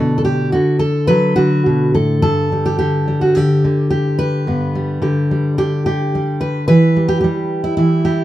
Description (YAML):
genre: folk, solo fingerstyle acoustic guitar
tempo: 108 BPM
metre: 4/4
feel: straight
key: unclear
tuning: A4 = 439 Hz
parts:
  - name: fingerpicked steel-string acoustic guitar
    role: solo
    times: 0.0-8.2 s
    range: G2 to B4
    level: -13 LUFS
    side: equal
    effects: none
room: wet studio reverb, RT60 0.5 s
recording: band playing live in one room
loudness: -13 LUFS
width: side -14 dB against mid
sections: 0.0-8.2 A section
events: none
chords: 0.0 Bm7; 2.2 G; 6.7 Em